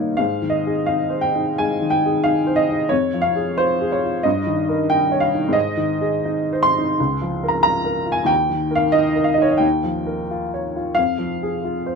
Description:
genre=classical, romantic character piece for solo piano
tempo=89 BPM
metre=4/4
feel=uneven beats, rubato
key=Ab major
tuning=A4 = 438 Hz
part: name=warm upright piano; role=solo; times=0.0-12.0 s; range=Db2 to C6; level=-17 LUFS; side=equal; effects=none
room=light reverb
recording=close, detailed microphones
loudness=-17 LUFS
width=side -5 dB against mid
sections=0.0-12.0 A section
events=none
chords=0.2 Ab; 2.9 Fm; 4.2 Eb7/G; 5.6 Ab; 7.0 Bbm/Db; 8.3 Eb5; 11.0 Fm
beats=| 0.19 0.89 1.58 2.25 | 2.90 3.58 4.24 4.90 | 5.55 6.26 6.98 7.64 | 8.30 8.96 9.63 10.31 | 10.97 11.64

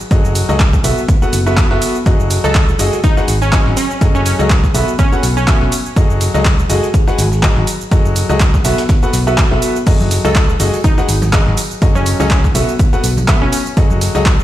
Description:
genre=piano house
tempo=123 BPM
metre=4/4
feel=swing 56% on 16ths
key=F# dorian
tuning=A4 = 440 Hz
part: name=punchy analog drum machine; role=drums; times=0.0-14.4 s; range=cabasa, crash cymbal, handclaps, hi-hat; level=-21 LUFS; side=right 1 dB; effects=overdrive
part: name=clear grand piano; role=riff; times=0.1-14.3 s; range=F#3 to F#5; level=-18 LUFS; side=left 1 dB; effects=sidechain pumping, ping-pong delay
part: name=fingered electric bass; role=bass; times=0.1-14.4 s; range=F#1 to C#2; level=-16 LUFS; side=equal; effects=sidechain pumping
part: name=dusty soul sampler-style drum kit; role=drums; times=0.1-14.4 s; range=hi-hat, snare drum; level=-30 LUFS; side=left 2 dB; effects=none
part: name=electronic kick drum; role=drums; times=0.1-14.4 s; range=none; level=-14 LUFS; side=equal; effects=none
part: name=glassy wavetable pluck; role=melody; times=2.4-5.7, 10.2-13.6 s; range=C#4 to A4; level=-21 LUFS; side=right 1 dB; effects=chorus, ping-pong delay
part: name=tambourine and congas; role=percussion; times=9.9-14.4 s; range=none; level=-26 LUFS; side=right 2 dB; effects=none
room=little or no reverb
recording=played on a big sound system in a bare room, stone room reverb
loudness=-11 LUFS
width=side -13 dB against mid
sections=0.0-14.4 A section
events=none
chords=0.0 F#m69; 0.8 B7sus4; 2.1 F#m69; 3.0 G#m7; 3.8 F#m69; 4.7 B7sus4; 6.0 F#m69; 6.9 G#m7; 7.7 F#m69; 8.6 B7sus4; 9.9 F#m69; 10.8 G#m7; 11.6 F#m69; 12.5 B7sus4; 13.8 F#m69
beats=| 0.11 0.60 1.09 1.57 | 2.06 2.55 3.04 3.52 | 4.01 4.50 4.99 5.48 | 5.96 6.45 6.94 7.43 | 7.92 8.40 8.89 9.38 | 9.87 10.35 10.84 11.33 | 11.82 12.30 12.79 13.28 | 13.77 14.26

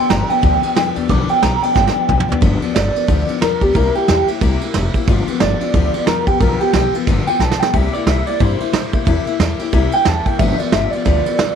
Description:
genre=rockabilly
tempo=180 BPM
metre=4/4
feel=swing 60% on 8ths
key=G mixolydian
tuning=A4 = 440 Hz
part: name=electric guitar through a small old amp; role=melody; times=0.0-11.6 s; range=G4 to D6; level=-18 LUFS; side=right 1 dB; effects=analog chorus, tape echo
part: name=picked steel-string acoustic guitar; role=accompaniment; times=0.0-11.6 s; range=G2 to G4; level=-21 LUFS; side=left 11 dB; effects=none
part: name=upright bass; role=bass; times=0.1-11.6 s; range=F1 to Bb2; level=-19 LUFS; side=equal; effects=none
part: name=soft brush drum kit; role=drums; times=0.1-11.5 s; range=kick drum, ride cymbal, snare drum, toms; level=-18 LUFS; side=right 3 dB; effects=none
room=light reverb, small room reverb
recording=1960s-style stereo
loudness=-13 LUFS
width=side -7 dB against mid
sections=0.0-2.4 A section; 2.4-11.6 B section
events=clean electric guitar solo 0.0-2.4; drum fill 1.8-2.4, 7.4-7.7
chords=0.0 G7; 3.7 C7; 5.1 G7; 7.7 C7; 10.4 G7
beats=0.10 0.43 0.76 | 1.09 1.42 1.75 2.08 | 2.42 2.75 3.08 3.41 | 3.74 4.08 4.41 4.74 | 5.07 5.41 5.74 6.07 | 6.40 6.74 7.07 7.40 | 7.74 8.07 8.40 8.73 | 9.07 9.40 9.73 10.06 | 10.40 10.73 11.06 11.39

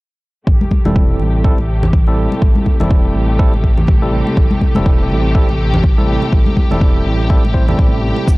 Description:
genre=afro house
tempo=123 BPM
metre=4/4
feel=swing 58% on 16ths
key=A minor pentatonic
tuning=A4 = 440 Hz
part: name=rich studio string section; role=sustained chords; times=0.5-8.4 s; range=C3 to G4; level=-22 LUFS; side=equal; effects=sidechain pumping, low-pass filter
part: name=smooth gliding synth bass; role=bass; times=0.5-8.4 s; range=E1 to A1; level=-17 LUFS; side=equal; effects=tube saturation, sidechain pumping
part: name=electronic kick drum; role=drums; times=0.5-8.4 s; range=none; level=-12 LUFS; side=equal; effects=none
part: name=congas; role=percussion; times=0.6-8.3 s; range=none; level=-20 LUFS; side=left 1 dB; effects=none
part: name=bright tine electric piano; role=stabs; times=0.9-8.3 s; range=G3 to C5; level=-20 LUFS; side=right 1 dB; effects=medium stereo tremolo, vintage 12-bit sampler grit, sidechain pumping, low-pass filter, tape echo
part: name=shaker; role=drums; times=8.3-8.4 s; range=none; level=-34 LUFS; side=equal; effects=none
room=studio reverb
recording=dry, gritty hardware recording, transformer saturation, cassette tape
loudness=-11 LUFS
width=side -22 dB against mid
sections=0.5-8.4 A section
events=filter sweep on analog synth bass 0.5-8.4; filter sweep on string section 0.5-8.4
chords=0.5 Am7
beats=| 0.47 0.96 1.45 1.94 | 2.42 2.91 3.40 3.89 | 4.38 4.86 5.35 5.84 | 6.33 6.81 7.30 7.79 | 8.28

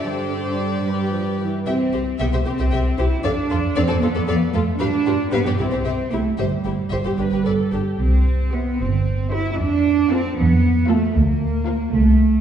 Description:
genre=quick classical-period movement for string orchestra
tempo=76 BPM (dotted quarters)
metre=6/8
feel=straight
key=C major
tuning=A4 = 435 Hz
part: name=warm symphonic violin section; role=melody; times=0.0-11.9 s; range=G4 to G5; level=-33 LUFS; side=left 7 dB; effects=none
part: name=warm symphonic violin section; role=second line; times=0.0-11.9 s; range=D4 to E5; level=-30 LUFS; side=left 3 dB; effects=none
part: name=dark symphonic viola section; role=accompaniment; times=0.0-11.9 s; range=D3 to B4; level=-28 LUFS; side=left 1 dB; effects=none
part: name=warm symphonic cello section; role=bass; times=0.0-12.4 s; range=G2 to E4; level=-21 LUFS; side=right 3 dB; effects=none
part: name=rich symphonic double bass section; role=bass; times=1.7-12.4 s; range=G1 to G2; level=-20 LUFS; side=right 1 dB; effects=none
room=wet scoring stage reverb, RT60 1.6 s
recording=heard from further back in the room, nothing above 10.5 kHz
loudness=-17 LUFS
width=side -9 dB against mid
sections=0.0-1.7 A section; 1.7-12.4 B section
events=none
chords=0.0 Gsus4; 0.8 G; 1.7 C; 3.2 Dm/F; 4.8 G; 5.6 C5; 6.4 N.C.; 7.2 G; 8.0 C; 9.6 Dm/F; 11.2 Bb/D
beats=| 0.03 0.85 | 1.67 2.46 | 3.25 4.03 | 4.81 5.59 | 6.39 7.20 | 8.00 8.80 | 9.59 10.37 | 11.15 11.94

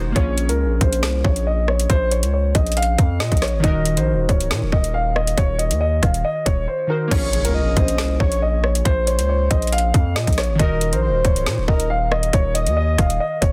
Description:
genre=hip hop, drill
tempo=138 BPM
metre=4/4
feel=half-time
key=Bb minor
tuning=A4 = 440 Hz
part: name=glassy digital keys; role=accompaniment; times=0.0-13.5 s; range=Eb3 to C5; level=-30 LUFS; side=equal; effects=chorus, low-pass filter
part: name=distorted 808-style bass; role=bass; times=0.0-13.5 s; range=Db1 to Bb2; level=-23 LUFS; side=equal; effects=distortion
part: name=dark concert grand piano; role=melody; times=0.2-13.5 s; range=Bb4 to F5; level=-25 LUFS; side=equal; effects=low-pass filter
part: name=drill drum kit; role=drums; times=0.2-13.5 s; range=crash cymbal, hi-hat, kick drum, rim click, snare drum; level=-22 LUFS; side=equal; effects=overdrive
part: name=breathy flute-like synth lead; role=second line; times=7.1-13.2 s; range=Bb4 to Eb5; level=-29 LUFS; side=equal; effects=chorus, digital delay
part: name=impact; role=sound effects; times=7.1-8.9 s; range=none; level=-34 LUFS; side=equal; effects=none
room=little or no reverb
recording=dense, heavily limited modern master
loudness=-19 LUFS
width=mono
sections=0.0-7.1 A section; 7.1-13.5 B section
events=break 0.0; impact 7.1-8.9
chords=0.2 Bbm7; 3.6 Ebm; 7.1 Bbm7; 10.6 Ebm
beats=| 0.16 0.59 1.03 1.46 | 1.90 2.33 2.77 3.20 | 3.64 4.07 4.51 4.94 | 5.38 5.81 6.25 6.68 | 7.12 7.55 7.98 8.42 | 8.85 9.29 9.72 10.16 | 10.59 11.03 11.46 11.90 | 12.33 12.77 13.20

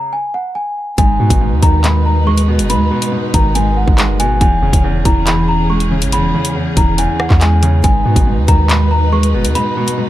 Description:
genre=hip hop, drill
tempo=140 BPM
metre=4/4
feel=half-time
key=G# minor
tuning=A4 = 438 Hz
part: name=celesta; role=melody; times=0.0-10.0 s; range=F#5 to C#6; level=-19 LUFS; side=equal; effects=none
part: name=clear concert grand piano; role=accompaniment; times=0.0-10.1 s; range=E2 to G#3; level=-17 LUFS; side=right 1 dB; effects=none
part: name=dark symphonic string section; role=sustained chords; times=1.0-10.1 s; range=E3 to B4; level=-23 LUFS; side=equal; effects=none
part: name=long sustained 808-style bass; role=bass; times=1.0-9.5 s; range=E1 to G#2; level=-14 LUFS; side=equal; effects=none
part: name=drill drum kit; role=drums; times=1.0-10.0 s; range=handclaps, hi-hat, kick drum, rim click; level=-14 LUFS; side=equal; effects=none
room=small room ambience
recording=none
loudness=-11 LUFS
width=side -14 dB against mid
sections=1.0-10.1 A section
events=stop 0.0-1.0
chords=0.0 E6 (rootless); 1.0 G#m; 4.4 E6; 7.8 G#m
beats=0.12 0.55 | 0.98 1.41 1.84 2.27 | 2.70 3.12 3.55 3.98 | 4.41 4.84 5.27 5.70 | 6.12 6.55 6.98 7.41 | 7.84 8.27 8.70 9.12 | 9.55 9.98

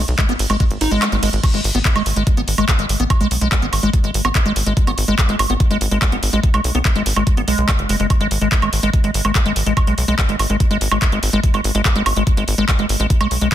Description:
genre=psychedelic trance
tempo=144 BPM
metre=4/4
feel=straight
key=G# phrygian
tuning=A4 = 440 Hz
part: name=tight sequencer bass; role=bass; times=0.0-13.5 s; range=F#1 to B1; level=-20 LUFS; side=equal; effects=none
part: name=big-room dance drum kit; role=drums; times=0.1-13.5 s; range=crash cymbal, handclaps, hi-hat, ride cymbal, woodblock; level=-21 LUFS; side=right 2 dB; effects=overdrive
part: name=liquid acid bass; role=riff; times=0.2-13.5 s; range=F#3 to D#4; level=-20 LUFS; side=left 1 dB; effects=chorus, auto-pan, sidechain pumping, dub echo
part: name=electronic kick drum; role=drums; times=0.2-13.5 s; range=none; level=-16 LUFS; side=equal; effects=none
room=light reverb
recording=dense, heavily limited modern master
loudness=-14 LUFS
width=side -12 dB against mid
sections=0.0-1.4 A section; 1.4-13.5 A section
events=drop 0.0-1.4, 1.4-13.5; kick drops out 1.0-1.4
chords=0.0 G#5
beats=0.18 0.60 1.02 | 1.44 1.85 2.27 2.69 | 3.10 3.52 3.94 4.35 | 4.77 5.18 5.60 6.02 | 6.43 6.85 7.27 7.68 | 8.10 8.52 8.94 9.35 | 9.77 10.19 10.60 11.02 | 11.44 11.85 12.27 12.69 | 13.10 13.52

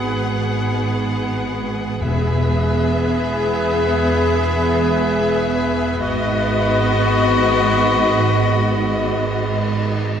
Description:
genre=cinematic, emotional film score for orchestra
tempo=free time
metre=none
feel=none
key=unclear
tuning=A4 = 444 Hz
part: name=rich chamber violin section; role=melody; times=0.0-10.0 s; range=D#5 to F#5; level=-26 LUFS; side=left 3 dB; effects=none
part: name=clear clarinet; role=second line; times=0.0-9.9 s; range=F#4 to G#4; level=-26 LUFS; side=left 5 dB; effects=none
part: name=silver concert flute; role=second line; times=0.0-10.0 s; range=D#5 to F#5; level=-28 LUFS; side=left 1 dB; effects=none
part: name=warm oboe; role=second line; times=0.0-9.9 s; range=B4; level=-27 LUFS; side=left 1 dB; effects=none
part: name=warm symphonic violin section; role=second line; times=0.0-10.1 s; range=F#4 to G#4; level=-29 LUFS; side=left 2 dB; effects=none
part: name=rich symphonic viola section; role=accompaniment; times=0.0-10.0 s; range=B3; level=-25 LUFS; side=right 2 dB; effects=none
part: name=mellow French horn section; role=sustained chords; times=0.0-9.9 s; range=B3 to G#4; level=-24 LUFS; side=left 2 dB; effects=none
part: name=clear studio cello section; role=bass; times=0.0-10.0 s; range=E2 to G#2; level=-23 LUFS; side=right 1 dB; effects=none
part: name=rich symphonic double bass section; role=bass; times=0.0-10.0 s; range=E1 to G#1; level=-24 LUFS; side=right 3 dB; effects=none
part: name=timpani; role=percussion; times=2.0-3.0 s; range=E2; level=-22 LUFS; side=left 1 dB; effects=none
room=wet scoring stage reverb, RT60 1.8 s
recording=heard from further back in the room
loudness=-16 LUFS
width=side -8 dB against mid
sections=0.0-10.2 A section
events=none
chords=0.0 G#m7; 2.0 E; 6.0 G#m7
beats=free time

